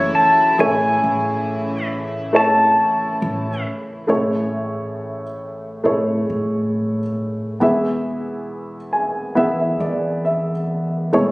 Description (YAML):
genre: acoustic folk-pop ballad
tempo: 68 BPM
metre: 4/4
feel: straight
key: A major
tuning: A4 = 440 Hz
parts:
  - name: pedal steel guitar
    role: melody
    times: 0.0-3.6 s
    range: C#5 to A5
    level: -16 LUFS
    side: left 1 dB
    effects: slapback echo
  - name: warm baby grand piano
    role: accompaniment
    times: 0.0-11.3 s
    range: F#1 to G#5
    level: -20 LUFS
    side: equal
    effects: none
  - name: warm studio string section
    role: sustained chords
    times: 0.0-4.1 s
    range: C#3 to E4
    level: -27 LUFS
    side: equal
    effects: none
  - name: upright bass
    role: bass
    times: 0.0-11.3 s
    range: E1 to A2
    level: -26 LUFS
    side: equal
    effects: none
room: moderate recital hall reverb, RT60 1.4 s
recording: recorded on a phone in the room, studio reverb, compression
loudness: -17 LUFS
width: side -22 dB against mid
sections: 0.0-4.1 A section; 4.1-11.3 B section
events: none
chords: 0.0 F#m7; 0.6 Amaj7; 7.6 E